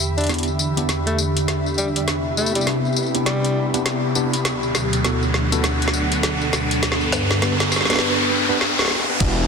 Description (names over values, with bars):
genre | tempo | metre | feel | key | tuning
glitch hop | 101 BPM | 4/4 | swing 61% on 16ths | unclear | A4 = 442 Hz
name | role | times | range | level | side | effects
warm analog pad | sustained chords | 0.0-9.5 s | D2 to G4 | -23 LUFS | equal | chorus, sidechain pumping
drum and bass drum kit | drums | 0.0-9.5 s | crash cymbal, hi-hat, snare drum, tambourine | -23 LUFS | left 1 dB | soft clipping on snare
riser, noise sweep and downlifter | sound effects | 1.6-9.5 s | none | -25 LUFS | equal | none
granular cloud pad | texture | 0.0-9.5 s | D4 to B5 | -27 LUFS | equal | built-in reverb, sidechain pumping
breathy tenor saxophone | melody | 0.2-3.7 s | G3 to D4 | -28 LUFS | left 1 dB | low-pass filter, ping-pong delay
tine electric piano | stabs | 0.3-9.5 s | B3 to B4 | -26 LUFS | right 1 dB | overdrive, fast stereo tremolo, sidechain pumping, low-pass filter, ping-pong delay
phased detuned saw bass | bass | 9.2-9.5 s | E1 | -20 LUFS | equal | phaser
electronic kick drum | drums | 9.2-9.3 s | none | -22 LUFS | equal | none
room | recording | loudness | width
wet lush hall reverb, RT60 2.9 s | dense, heavily limited modern master | -17 LUFS | side -5 dB against mid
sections
0.0-9.2 A section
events
build-up 0.0-9.2; drum fill 0.0-8.0, 8.6-9.2; riser 1.6-9.2; noise sweep 6.8-9.2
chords
0.0 Em7; 2.1 Cmaj7; 4.5 D6; 6.8 G